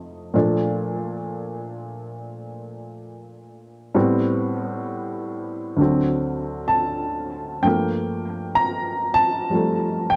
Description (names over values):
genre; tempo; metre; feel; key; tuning
solo jazz; 65 BPM; 4/4; swing 66% on 8ths, rubato; G minor; A4 = 441 Hz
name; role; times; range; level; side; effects
warm upright piano; solo; 0.0-10.2 s; D2 to Bb5; -24 LUFS; equal; none
room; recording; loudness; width
wet studio reverb, RT60 0.6 s; none; -23 LUFS; mono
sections
0.0-10.2 A section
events
none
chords
0.3 Bbmaj7; 4.0 Am9; 5.8 D7; 7.7 Gm9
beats
| 0.34 1.25 2.15 3.06 | 3.96 4.87 5.79 6.72 | 7.65 8.59 9.52